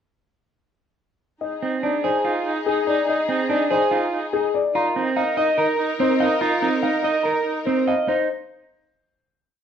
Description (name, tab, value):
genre	classical, minimalist pattern music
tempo	144 BPM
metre	4/4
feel	straight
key	F dorian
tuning	A4 = 440 Hz
part	dark grand piano	melody	1.4-8.3 s	Ab4 to Bb5	-23 LUFS	left 6 dB	none
part	warm oboe	second line	1.4-7.8 s	Eb4	-26 LUFS	right 3 dB	none
part	rich studio string section	sustained chords	1.4-7.8 s	Eb4 to Bb4	-29 LUFS	left 2 dB	none
part	electric guitar at the edge of break-up	arpeggios	1.6-8.3 s	C4 to Eb5	-22 LUFS	right 4 dB	none
room	moderate large studio reverb, RT60 1.0 s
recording	worn, warbling old tape, cassette tape, warbly pitch drift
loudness	-19 LUFS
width	side -8 dB against mid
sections	1.4-8.1 A section; 8.1-9.6 final chord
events	none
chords	1.4 Fm7; 4.7 Ebsus2; 8.1 N.C.